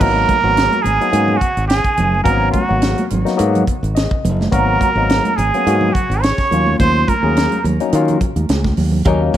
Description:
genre	electric jazz fusion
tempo	106 BPM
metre	4/4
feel	swing 54% on 16ths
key	G# minor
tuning	A4 = 440 Hz
part	trumpet with straight mute	melody	0.0-7.6 s	F#4 to C#5	-20 LUFS	right 1 dB	analog delay
part	breathy mellow silver concert flute	second line	0.0-7.7 s	F#5 to C#6	-21 LUFS	right 10 dB	none
part	barky tine electric piano	accompaniment	0.0-9.4 s	F#3 to D#5	-20 LUFS	left 7 dB	none
part	modern bright fingered electric bass	bass	0.0-9.3 s	F#1 to D#3	-17 LUFS	equal	none
part	tight funk drum kit	drums	0.0-9.4 s	crash cymbal, hi-hat, kick drum, snare drum	-20 LUFS	equal	none
part	congas	percussion	0.3-9.4 s	none	-23 LUFS	right 4 dB	none
part	clean electric guitar	stabs	9.1-9.4 s	F#3 to A#4	-27 LUFS	right 2 dB	analog chorus, analog delay
room	light reverb, small room ambience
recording	vinyl crackle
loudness	-13 LUFS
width	side -11 dB against mid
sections	0.0-9.4 A section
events	tine electric piano fill 3.7-4.5; drum fill 8.3-9.1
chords	0.0 G#m9; 6.5 D#m9

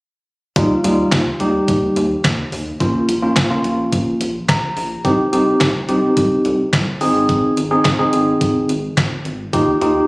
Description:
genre	synth-pop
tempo	107 BPM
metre	4/4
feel	straight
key	unclear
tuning	A4 = 436 Hz
part	tine electric piano	accompaniment	0.6-10.1 s	G3 to Bb5	-16 LUFS	equal	medium tremolo
part	rubbery square bass	bass	0.6-10.0 s	Ab1 to Eb2	-23 LUFS	equal	none
part	detuned 8-bit digital drum machine	drums	0.6-9.9 s	handclaps, hi-hat, kick drum, snare drum	-19 LUFS	equal	none
room	moderate digital room reverb, RT60 1.1 s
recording	recorded on a phone in the room, studio reverb, compression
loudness	-14 LUFS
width	side -26 dB against mid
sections	0.6-10.1 A section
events	tine electric piano fill 4.2-5.0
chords	0.6 Ebadd9; 2.8 Bbm; 5.0 Cm; 7.0 Ab; 9.5 Ebadd9

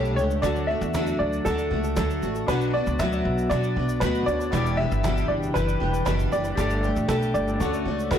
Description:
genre	acoustic pop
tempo	117 BPM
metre	4/4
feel	straight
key	D major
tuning	A4 = 440 Hz
part	clear baby grand piano	accompaniment	0.0-8.2 s	B3 to C#6	-36 LUFS	left 6 dB	plate reverb
part	picked steel-string acoustic guitar	accompaniment	0.0-8.2 s	E2 to G4	-26 LUFS	equal	double-tracked left and right, plate reverb
part	upright bass	bass	0.0-8.2 s	E1 to B2	-27 LUFS	equal	tube saturation
part	tube shaker	percussion	0.0-8.2 s	none	-47 LUFS	right 6 dB	none
part	warm upright piano	melody	0.2-8.2 s	A4 to E5	-28 LUFS	left 1 dB	plate reverb, ping-pong delay
part	cajon	drums	0.4-8.2 s	none	-33 LUFS	equal	none
room	light reverb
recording	blown-out, overdriven recording, overdrive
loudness	-22 LUFS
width	side -9 dB against mid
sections	0.0-8.2 A section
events	none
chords	0.4 D; 2.5 Bm; 4.5 Em7; 6.6 Gsus2; 7.6 Dmaj7

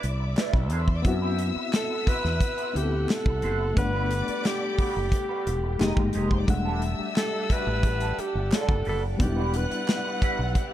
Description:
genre	lush 1970s-style soul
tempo	88 BPM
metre	4/4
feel	straight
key	E minor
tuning	A4 = 438 Hz
part	breathy alto saxophone	melody	0.0-10.7 s	G4 to B4	-30 LUFS	right 1 dB	none
part	warm studio string section	second line	0.0-10.7 s	F4 to F#6	-35 LUFS	left 4 dB	none
part	reed electric piano	accompaniment	0.0-10.7 s	G3 to F#5	-32 LUFS	left 3 dB	fast tremolo
part	string machine, full ensemble	sustained chords	0.0-10.7 s	Ab3 to B5	-37 LUFS	right 1 dB	ensemble chorus
part	electric guitar through a small old amp	riff	0.0-10.6 s	G3 to C5	-36 LUFS	right 4 dB	wah, lush chorus
part	fretless electric bass	bass	0.0-10.5 s	E1 to F#2	-28 LUFS	equal	none
part	modern studio drum kit	drums	0.0-10.7 s	hi-hat, kick drum, snare drum	-25 LUFS	equal	none
part	group handclap	percussion	0.4-10.0 s	none	-42 LUFS	right 5 dB	none
room	light reverb, small room ambience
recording	dark, warm production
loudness	-23 LUFS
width	side -12 dB against mid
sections	0.0-10.7 A section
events	none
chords	0.0 Em7; 1.1 D13 (rootless); 3.8 Gmaj9; 5.8 Fm11; 6.5 Em11; 9.2 Cmaj9/E (rootless)

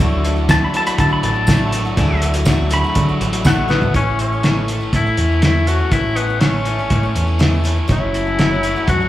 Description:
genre	folk rock and heartland rock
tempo	122 BPM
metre	4/4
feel	straight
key	A major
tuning	A4 = 440 Hz
part	pedal steel guitar	second line	0.0-3.7 s	C#5 to B5	-21 LUFS	left 1 dB	slapback echo
part	bright grand piano	accompaniment	0.0-3.5 s	D4 to G#4	-31 LUFS	left 1 dB	none
part	picked swing-style acoustic guitar	accompaniment	0.0-9.1 s	F#2 to F#4	-26 LUFS	left 4 dB	slapback echo
part	tonewheel organ	sustained chords	0.0-3.9 s	F#3 to E4	-28 LUFS	equal	slow rotary speaker, overdrive, chorus vibrato
part	cranked stack guitar	riff	0.0-9.1 s	F#2 to D4	-26 LUFS	right 2 dB	overdrive, slapback echo
part	deep dub picked electric bass	bass	0.0-9.1 s	F#1 to D3	-19 LUFS	equal	none
part	cloth-damped thuddy drum kit	drums	0.0-9.0 s	hi-hat, kick drum, snare drum, toms	-18 LUFS	equal	none
part	tambourine	percussion	0.5-3.6 s	none	-32 LUFS	right 3 dB	none
part	warm tenor saxophone	melody	3.7-9.1 s	B3 to F#4	-20 LUFS	left 3 dB	slapback echo
room	light reverb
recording	live gig heard through the venue's PA, club reverb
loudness	-14 LUFS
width	side -14 dB against mid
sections	0.0-3.9 A section; 3.9-9.1 B section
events	pedal steel guitar solo 0.0-3.9; drum fill 3.7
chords	0.0 Dadd9; 3.9 A; 7.9 F#m

